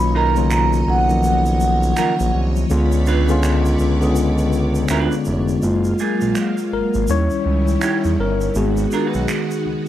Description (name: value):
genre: R&B, neo-soul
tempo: 82 BPM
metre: 4/4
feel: swing 62% on 16ths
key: F# major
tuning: A4 = 440 Hz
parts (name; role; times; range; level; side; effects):
- vibraphone with soft mallets; melody; 0.0-2.3 s; F#5 to B5; -20 LUFS; right 2 dB; none
- tine electric piano; accompaniment; 0.0-9.9 s; C#3 to C#5; -20 LUFS; left 4 dB; medium stereo tremolo
- string machine, violins; sustained chords; 0.0-9.9 s; D#3 to B5; -26 LUFS; right 1 dB; ensemble chorus
- smooth synth bass; bass; 0.0-9.7 s; E#1 to E2; -19 LUFS; right 1 dB; none
- semi-hollow electric guitar; second line; 0.1-9.3 s; A#3 to B4; -25 LUFS; right 6 dB; none
- tube shaker and finger snaps; percussion; 0.4-9.6 s; none; -30 LUFS; right 5 dB; none
room: studio reverb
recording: dry, close 1970s-style studio recording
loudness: -16 LUFS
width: side -12 dB against mid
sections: 0.0-5.6 A section; 5.6-9.9 B section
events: tine electric piano solo 5.6-9.9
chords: 0.0 Bmaj9#11; 2.7 C#7b9; 5.6 F#maj9; 7.1 D#7b9; 8.6 G#m7